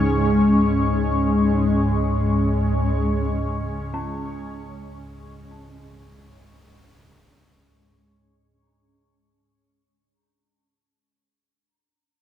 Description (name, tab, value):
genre	dark ambient drone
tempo	free time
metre	none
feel	none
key	unclear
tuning	A4 = 441 Hz
part	granular cloud pad	sustained chords	0.0-7.7 s	G#3 to C#5	-22 LUFS	equal	built-in reverb
part	dark detuned synth bell	arpeggios	0.0-10.2 s	C#4	-40 LUFS	right 2 dB	chorus, phaser, diffuse ambient delay
part	analog drone	drone	0.0-7.8 s	C#2 to G#2	-23 LUFS	left 1 dB	chorus
room	wet plate reverb, RT60 2.5 s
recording	dreamy mix soaked in reverb, cassette tape, small room ambience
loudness	-18 LUFS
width	side -10 dB against mid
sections	0.0-7.7 A section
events	fade-out 0.0-7.7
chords	0.0 C#5